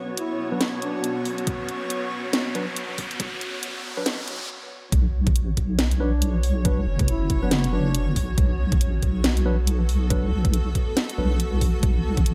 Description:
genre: deep dubstep.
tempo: 139 BPM.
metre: 4/4.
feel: swing 59% on 16ths, half-time.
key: B minor.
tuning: A4 = 437 Hz.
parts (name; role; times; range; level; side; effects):
granular cloud pad; sustained chords; 0.0-12.3 s; B3 to C#5; -34 LUFS; equal; built-in reverb.
riser; sound effects; 0.0-4.5 s; none; -36 LUFS; equal; none.
dark duduk; melody; 0.2-1.2, 6.0-8.1 s; B3 to E4; -34 LUFS; equal; low-pass filter, dub echo.
garage drum kit; drums; 0.2-12.3 s; hi-hat, snare drum; -28 LUFS; equal; none.
bright tine electric piano; stabs; 0.5-11.3 s; F#3 to B4; -34 LUFS; equal; low-pass filter, dub echo.
electronic kick drum; drums; 1.5-12.2 s; none; -25 LUFS; equal; none.
deep soft wobble bass; bass; 4.9-12.3 s; F#1 to B1; -25 LUFS; equal; chorus.
room: light reverb, digital ambience.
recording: high-pass filter.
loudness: -24 LUFS.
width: mono.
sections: 0.0-4.9 A section; 4.9-12.3 B section.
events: build-up 0.0-4.9; riser 0.0-4.5; filter sweep on tine electric piano 0.0-4.9; filter sweep 0.0-4.9; stop 4.5-4.9; drop 4.9-12.3.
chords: 0.0 B5.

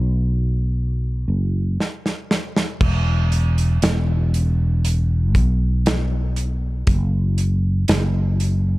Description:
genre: pop ballad.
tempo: 59 BPM.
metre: 4/4.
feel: straight.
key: unclear.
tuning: A4 = 440 Hz.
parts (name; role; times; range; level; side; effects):
sustaining fretless electric bass; bass; 0.0-8.8 s; E1 to B1; -18 LUFS; equal; analog chorus.
modern studio drum kit; drums; 1.8-8.6 s; crash cymbal, hi-hat, kick drum, snare drum; -21 LUFS; equal; none.
room: little or no reverb.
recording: dark, warm production.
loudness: -18 LUFS.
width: side -20 dB against mid.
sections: 0.0-2.8 A section; 2.8-8.8 B section.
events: drum fill 1.8-2.8.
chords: none.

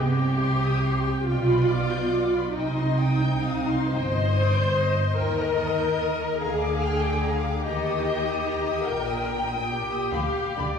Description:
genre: classical, slow romantic movement for string orchestra.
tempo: 42-50 BPM (dotted quarters).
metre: 6/8.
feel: rubato.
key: C minor.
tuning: A4 = 445 Hz.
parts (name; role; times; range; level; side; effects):
rich studio violin section; melody; 0.0-10.7 s; Eb5 to G6; -36 LUFS; left 5 dB; none.
rich studio viola section; accompaniment; 0.0-10.8 s; Eb4 to C5; -26 LUFS; equal; none.
rich studio cello section; bass; 0.0-10.7 s; G2 to Eb3; -28 LUFS; equal; none.
warm studio double bass section; bass; 0.0-10.7 s; G1 to Eb2; -29 LUFS; right 1 dB; none.
rich studio violin section; second line; 1.3-10.8 s; D5 to G5; -31 LUFS; left 4 dB; none.
room: wet scoring stage reverb, RT60 2.1 s.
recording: heard from further back in the room, small room ambience.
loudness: -22 LUFS.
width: side -7 dB against mid.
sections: 0.0-10.8 A section.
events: none.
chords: 0.0 Cm; 1.3 G/B; 2.5 Cm; 5.2 Eb; 6.4 Bb/D; 7.6 Eb; 10.1 G5.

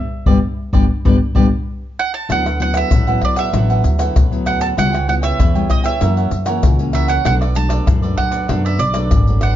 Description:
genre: samba and choro.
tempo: 97 BPM.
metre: 4/4.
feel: straight.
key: D major.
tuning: A4 = 444 Hz.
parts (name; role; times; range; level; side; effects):
bowl-back mandolin; melody; 0.0-9.6 s; D5 to A5; -21 LUFS; right 6 dB; none.
cavaquinho; accompaniment; 0.3-9.6 s; D4 to G5; -25 LUFS; right 5 dB; none.
nylon-string guitar; accompaniment; 0.3-9.6 s; F#2 to E4; -22 LUFS; left 4 dB; none.
upright bass; bass; 0.3-9.6 s; G1 to F#2; -18 LUFS; equal; none.
surdo, egg shaker, pandeiro and tamborim; percussion; 0.3-9.6 s; none; -18 LUFS; left 2 dB; none.
room: light reverb.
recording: dark, warm production, nothing above 7.5 kHz.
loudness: -13 LUFS.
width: side -12 dB against mid.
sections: 0.0-2.3 A section; 2.3-9.6 B section.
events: band accent 0.0-2.3; mandolin solo 0.0-2.3; drum fill 1.8-2.3.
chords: 0.0 G6; 2.3 D69; 4.8 C#m7b5; 6.0 F#7; 7.3 Bm7.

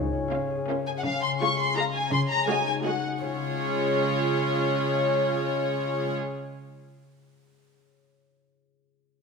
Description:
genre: cinematic, playful, whimsical film cue.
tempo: 167 BPM.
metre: 3/4.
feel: straight.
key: Db major.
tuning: A4 = 437 Hz.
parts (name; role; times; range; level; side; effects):
dark clarinet; second line; 0.0-0.9 s; Db5; -34 LUFS; right 1 dB; none.
mellow French horn section; sustained chords; 0.0-1.1 s; Db4 to Bb4; -38 LUFS; left 2 dB; none.
concert harp; arpeggios; 0.0-7.1 s; Db3 to Db5; -33 LUFS; left 8 dB; none.
rich studio cello section; bass; 0.0-6.1 s; Db3; -32 LUFS; right 4 dB; none.
warm studio violin section; melody; 0.3-6.1 s; Db5 to Db6; -28 LUFS; left 3 dB; none.
warm chamber violin section; second line; 0.3-6.1 s; F4 to F5; -30 LUFS; left 3 dB; none.
rich studio viola section; accompaniment; 0.3-6.1 s; Ab3 to Gb4; -31 LUFS; right 4 dB; none.
room: wet recital hall reverb, RT60 1.6 s.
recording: none.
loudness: -24 LUFS.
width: side -4 dB against mid.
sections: 0.0-1.1 A section; 1.1-3.2 B section; 3.2-5.4 C section.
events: none.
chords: 0.0 Db; 2.1 Ab5/Db; 3.2 Db.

